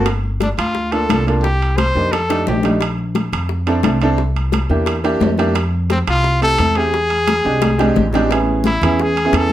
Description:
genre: Afro-Cuban jazz.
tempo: 175 BPM.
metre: 4/4.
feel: straight.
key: F major.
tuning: A4 = 439 Hz.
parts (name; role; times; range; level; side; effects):
clear upright piano; accompaniment; 0.0-9.5 s; G#3 to A4; -18 LUFS; right 2 dB; none.
upright bass; bass; 0.0-9.5 s; G1 to F2; -19 LUFS; equal; none.
bongos; percussion; 0.1-9.5 s; none; -25 LUFS; left 8 dB; none.
congas; percussion; 0.1-9.5 s; none; -23 LUFS; left 2 dB; none.
timbales; percussion; 0.1-9.5 s; none; -26 LUFS; right 5 dB; none.
clear trumpet; melody; 0.4-2.7, 5.9-9.5 s; C4 to C5; -18 LUFS; left 1 dB; none.
room: moderate studio reverb, RT60 0.6 s.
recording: none.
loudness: -14 LUFS.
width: side -13 dB against mid.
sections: 0.0-8.3 A section; 8.3-9.5 B section.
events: drum fill 2.1-2.8, 7.6-8.3.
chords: 0.1 Gm9; 1.4 Cm7; 2.1 F13; 2.8 Bbmaj9#11; 4.2 C7; 5.6 Fmaj9; 6.9 E7alt; 8.3 Amaj9.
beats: | 0.06 0.41 0.75 1.09 | 1.44 1.78 2.12 2.47 | 2.81 3.15 3.50 3.84 | 4.18 4.53 4.87 5.21 | 5.56 5.90 6.24 6.58 | 6.93 7.27 7.62 7.96 | 8.30 8.65 8.99 9.33.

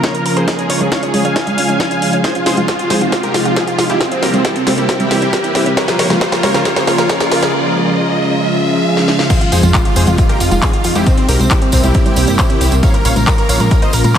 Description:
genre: uplifting trance.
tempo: 136 BPM.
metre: 4/4.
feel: straight.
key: F minor.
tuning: A4 = 440 Hz.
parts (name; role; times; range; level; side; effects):
dense compressed supersaw; melody; 0.0-14.2 s; C4 to Ab5; -18 LUFS; equal; sidechain pumping, low-pass filter, tape echo.
lush unison pad; sustained chords; 0.0-14.2 s; C3 to F4; -18 LUFS; equal; chorus, sidechain pumping.
analog pluck; arpeggios; 0.0-14.2 s; C4 to Bb4; -22 LUFS; right 3 dB; chorus, vintage 12-bit sampler grit, sidechain pumping, tape echo.
electronic kick drum; drums; 0.0-14.2 s; none; -15 LUFS; equal; high-pass filter on kick, high-pass filter on room.
techno drum kit; drums; 0.0-14.2 s; congas, crash cymbal, handclaps, hi-hat, snare drum; -18 LUFS; equal; none.
riser and impact; sound effects; 1.1-11.1 s; none; -24 LUFS; equal; none.
tambourine; percussion; 9.3-14.2 s; none; -25 LUFS; right 2 dB; none.
plucky analog bass; bass; 9.5-14.1 s; F1 to Bb2; -14 LUFS; equal; sidechain pumping.
room: moderate huge ambient reverb, RT60 3.9 s.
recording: dreamy mix soaked in reverb.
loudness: -11 LUFS.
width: side -9 dB against mid.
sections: 0.0-9.3 A section; 9.3-14.2 B section.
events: build-up 0.0-9.3; drum fill 0.0-7.5, 9.0-9.3; filter sweep on synth pluck 0.0-9.3; riser 1.1-9.3; drop 9.3-14.2; impact 9.3-11.1.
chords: 0.5 Db; 2.2 Fm7; 4.0 C7; 5.8 Bbm; 7.5 Db; 9.3 Fm7; 11.1 C7; 12.8 Bbm.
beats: 0.04 | 0.48 0.92 1.36 1.80 | 2.24 2.68 3.12 3.56 | 4.01 4.45 4.89 5.33 | 5.77 6.21 6.65 7.09 | 7.54 7.98 8.42 8.86 | 9.30 9.74 10.18 10.62 | 11.06 11.51 11.95 12.39 | 12.83 13.27 13.71 14.15.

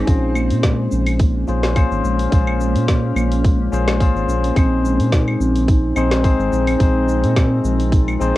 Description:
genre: organic downtempo.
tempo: 107 BPM.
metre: 4/4.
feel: swing 54% on 16ths.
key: Bb minor.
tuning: A4 = 443 Hz.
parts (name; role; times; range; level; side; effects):
granular cloud pad; sustained chords; 0.0-8.4 s; Ab3 to F4; -28 LUFS; equal; built-in reverb, sidechain pumping, cassette tape.
round analog bass; bass; 0.0-8.3 s; Ab1 to Bb2; -20 LUFS; equal; none.
bell-like tine electric piano; accompaniment; 0.1-8.4 s; C4 to C5; -23 LUFS; left 5 dB; sidechain pumping, low-pass filter, cassette tape, tape echo.
steel tongue drum; arpeggios; 0.1-8.4 s; Ab3 to Ab4; -22 LUFS; right 1 dB; cassette tape, tape echo.
deep house drum kit; drums; 0.1-8.3 s; claves, hi-hat, shaker, snare drum; -25 LUFS; equal; cassette tape.
electronic kick drum; drums; 0.1-8.0 s; none; -15 LUFS; equal; cassette tape.
room: moderate studio ambience, RT60 0.5 s.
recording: home recording on cassette.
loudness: -14 LUFS.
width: side -16 dB against mid.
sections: 0.1-8.4 A section.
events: none.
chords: 0.1 Bbm7; 4.6 Ab.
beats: | 0.07 0.64 1.20 1.76 | 2.32 2.88 3.44 4.00 | 4.56 5.12 5.68 6.24 | 6.80 7.37 7.93.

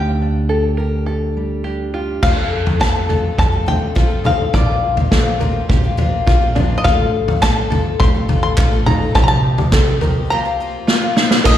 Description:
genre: indie folk with a building arrangement.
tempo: 104 BPM.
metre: 4/4.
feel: straight.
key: unclear.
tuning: A4 = 440 Hz.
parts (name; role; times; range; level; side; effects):
bluegrass banjo; melody; 0.0-11.6 s; D5 to C6; -21 LUFS; left 1 dB; slapback echo.
fingerpicked steel-string acoustic guitar; accompaniment; 0.0-2.2 s; D3 to G4; -23 LUFS; right 1 dB; slapback echo.
open-back banjo; arpeggios; 0.0-11.6 s; D4 to Bb4; -25 LUFS; right 2 dB; slapback echo.
upright bass; bass; 0.0-11.6 s; A1 to F2; -20 LUFS; right 1 dB; none.
picked twelve-string acoustic guitar; accompaniment; 2.2-11.6 s; F2 to A4; -22 LUFS; left 7 dB; slapback echo.
unplugged drum kit; drums; 2.2-11.6 s; crash cymbal, kick drum, snare drum, toms; -15 LUFS; equal; none.
group handclap; percussion; 7.4-9.9 s; none; -27 LUFS; right 2 dB; none.
clear upright piano; accompaniment; 11.4-11.6 s; Bb1 to Bb4; -26 LUFS; equal; none.
tube shaker; percussion; 11.5-11.6 s; none; -34 LUFS; right 4 dB; none.
room: little or no reverb.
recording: live gig heard through the venue's PA, recital hall reverb.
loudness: -14 LUFS.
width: side -11 dB against mid.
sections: 0.0-2.2 A section; 2.2-11.5 B section.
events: drum fill 10.9-11.5.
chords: 0.0 Dsus4; 2.2 F; 4.5 Bbadd9; 6.9 F/A; 9.2 Cm; 10.3 Fsus4.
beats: 0.50 1.08 1.66 | 2.23 2.81 3.39 3.97 | 4.54 5.12 5.70 6.28 | 6.85 7.43 8.00 8.58 | 9.16 9.73 10.31 10.88 | 11.46.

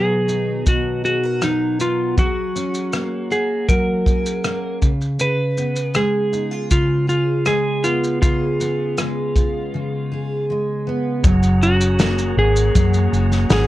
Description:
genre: acoustic pop.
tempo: 79 BPM.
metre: 4/4.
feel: straight.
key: unclear.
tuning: A4 = 439 Hz.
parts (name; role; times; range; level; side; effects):
clean lap steel guitar; melody; 0.0-13.7 s; D#4 to B4; -21 LUFS; equal; none.
picked steel-string acoustic guitar; accompaniment; 0.0-13.7 s; B2 to A#4; -21 LUFS; equal; double-tracked left and right.
natural country drum kit; drums; 0.3-13.7 s; kick drum, rim click, shaker, snare drum; -19 LUFS; equal; none.
tonewheel organ; sustained chords; 11.2-13.7 s; G#4 to A#5; -30 LUFS; equal; fast rotary speaker.
hollow-body short-scale fingered electric bass; bass; 11.2-13.7 s; F#1 to F#2; -17 LUFS; equal; none.
room: light reverb.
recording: worn, warbling old tape, cassette tape, warbly pitch drift.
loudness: -16 LUFS.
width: side -15 dB against mid.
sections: 0.0-11.2 A section; 11.2-13.7 B section.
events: break 9.7-11.2.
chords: 0.0 Bmaj7; 2.2 F#add9; 4.8 C#7; 11.2 F#add9.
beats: 0.66 1.42 | 2.17 2.93 3.69 4.44 | 5.20 5.95 6.71 7.47 | 8.22 8.98 9.73 10.49 | 11.25 12.00 12.76 13.51.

